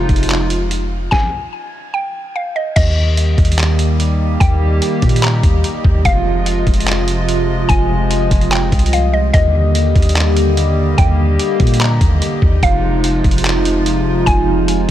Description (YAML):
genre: hip hop, atmospheric cloud-rap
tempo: 146 BPM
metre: 4/4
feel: half-time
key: unclear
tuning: A4 = 441 Hz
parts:
  - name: hollow soft pad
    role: sustained chords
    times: 0.0-14.9 s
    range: C3 to Eb5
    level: -18 LUFS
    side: equal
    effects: chorus, sidechain pumping
  - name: soft 808-style bass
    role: bass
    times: 0.0-14.9 s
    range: F1 to Bb2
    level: -16 LUFS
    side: equal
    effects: none
  - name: trip hop sampler-style drum kit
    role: drums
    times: 0.1-14.9 s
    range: crash cymbal, handclaps, hi-hat, kick drum, snare drum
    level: -17 LUFS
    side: equal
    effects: none
  - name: mallet-like synth pluck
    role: melody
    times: 1.1-14.9 s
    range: Eb5 to Bb5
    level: -22 LUFS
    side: equal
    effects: chorus, ping-pong delay
room: little or no reverb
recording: none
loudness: -12 LUFS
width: side -12 dB against mid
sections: 0.0-2.8 A section; 2.8-14.9 B section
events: stop 1.1-2.8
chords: 0.0 Fm7; 2.8 Eb; 6.1 Fm7; 9.3 Ebmaj7; 12.6 Fm7